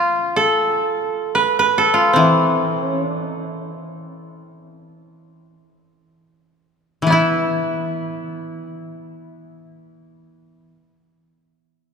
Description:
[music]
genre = japanese traditional, Japanese chamber music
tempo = free time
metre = none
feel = none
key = unclear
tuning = A4 = 438 Hz
[part]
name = koto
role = melody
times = 0.0-10.7 s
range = E4 to B4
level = -17 LUFS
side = right 1 dB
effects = none
[part]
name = koto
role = accompaniment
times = 2.2-10.8 s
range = E3 to E4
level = -21 LUFS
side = left 2 dB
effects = none
[sound]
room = moderate church reverb, RT60 3.8 s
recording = minimal, uncompressed stereo recording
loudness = -16 LUFS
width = side -6 dB against mid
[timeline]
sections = 0.0-7.1 A section; 7.1-11.9 B section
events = slowing down 0.0-7.1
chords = none

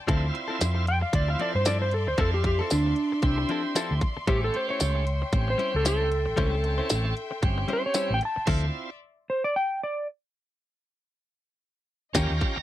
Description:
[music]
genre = straight-eighth soul blues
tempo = 114 BPM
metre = 4/4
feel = swing 56% on 16ths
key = D minor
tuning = A4 = 440 Hz
[part]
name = rich studio string section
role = sustained chords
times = 0.0-8.9, 12.2-12.6 s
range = D5 to Db6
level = -37 LUFS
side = left 2 dB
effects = none
[part]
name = overdriven tonewheel organ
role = accompaniment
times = 0.1-8.9, 12.1-12.6 s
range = A3 to Bb5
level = -33 LUFS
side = right 4 dB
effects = slow rotary speaker
[part]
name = direct-recorded clean electric guitar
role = stabs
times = 0.1-8.7, 12.1-12.6 s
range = F3 to B#4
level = -32 LUFS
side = left 5 dB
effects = none
[part]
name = hollow-body short-scale fingered electric bass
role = bass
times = 0.1-8.7, 12.1-12.6 s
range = G1 to G2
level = -27 LUFS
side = equal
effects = none
[part]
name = minimal click drum kit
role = drums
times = 0.1-8.6, 12.1-12.6 s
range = crash cymbal, hi-hat, kick drum, snare drum, tambourine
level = -27 LUFS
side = equal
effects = overdrive
[part]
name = clean lap steel guitar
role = melody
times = 0.9-10.1 s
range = D4 to A5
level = -27 LUFS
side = equal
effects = none
[sound]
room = little or no reverb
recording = dry, close 1970s-style studio recording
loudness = -24 LUFS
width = side -14 dB against mid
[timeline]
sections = 0.0-12.6 A section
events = electric slide guitar solo 0.0-12.6; stop 8.5-12.2; tonewheel organ fill 11.9-12.6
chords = 0.1 Dm9; 4.3 A7#9; 8.5 Dm9

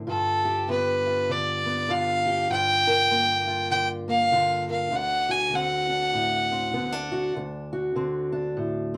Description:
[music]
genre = acoustic country blues, solo or duo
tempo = 99 BPM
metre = 4/4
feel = swing 60% on 8ths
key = unclear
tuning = A4 = 440 Hz
[part]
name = fingerpicked steel-string acoustic guitar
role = accompaniment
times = 0.0-9.0 s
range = D2 to Bb4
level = -31 LUFS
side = equal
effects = none
[part]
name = rich fiddle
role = melody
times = 0.1-7.4 s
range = A4 to G#5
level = -25 LUFS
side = equal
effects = none
[sound]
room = moderate small room reverb, RT60 0.5 s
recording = band playing live in one room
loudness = -25 LUFS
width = mono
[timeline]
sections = 0.0-9.0 A section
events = none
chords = 0.1 G7; 2.5 Gm7; 4.9 D7

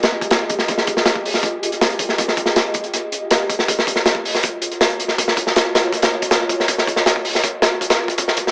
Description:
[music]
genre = drum and bass, jungle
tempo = 160 BPM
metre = 4/4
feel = straight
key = unclear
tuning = A4 = 439 Hz
[part]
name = ethereal airy pad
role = sustained chords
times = 0.0-8.5 s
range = F4 to Eb5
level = -27 LUFS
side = equal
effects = ensemble chorus, built-in reverb, phaser
[part]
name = crunchy breakbeat drum kit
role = drums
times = 0.0-8.5 s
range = hi-hat, kick drum, snare drum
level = -19 LUFS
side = equal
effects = high-pass filter on kick, high-pass filter on hats, high-pass filter on snare, high-pass filter on room, analog delay
[sound]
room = moderate spring reverb, RT60 1.8 s, small room reverb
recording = echo-heavy mix, vinyl crackle, small speaker sound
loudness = -18 LUFS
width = mono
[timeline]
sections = 0.0-8.5 A section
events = build-up 0.0-8.5; filter sweep on ambient pad 0.0-8.5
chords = 0.0 Fm9; 3.7 Ebm9

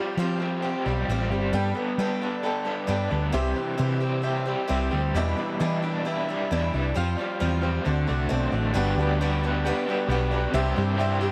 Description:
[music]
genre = folk rock and heartland rock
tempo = 133 BPM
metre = 4/4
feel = straight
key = G mixolydian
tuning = A4 = 440 Hz
[part]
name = picked swing-style acoustic guitar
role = accompaniment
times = 0.0-11.3 s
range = E2 to A4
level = -33 LUFS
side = equal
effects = none
[part]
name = tonewheel organ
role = sustained chords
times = 0.0-11.3 s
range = C4 to C5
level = -39 LUFS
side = equal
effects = none
[part]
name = crunchy overdriven guitar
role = riff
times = 0.0-11.3 s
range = E2 to A4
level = -31 LUFS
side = equal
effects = tremolo
[part]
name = hollow-body short-scale fingered electric bass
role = bass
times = 0.2-11.3 s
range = G1 to G3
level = -29 LUFS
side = equal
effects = none
[part]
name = bright grand piano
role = accompaniment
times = 1.5-11.3 s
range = F#4 to D6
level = -36 LUFS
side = equal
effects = none
[sound]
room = small room ambience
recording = none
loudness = -26 LUFS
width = mono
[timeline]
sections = 0.0-8.8 A section; 8.8-11.3 B section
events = grand piano fill 7.9-8.8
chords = 0.0 Fsus2; 1.5 Gadd9; 3.3 C; 5.1 Em7; 7.0 Fsus2; 7.9 D7; 8.8 Gmaj7; 10.5 Cadd9

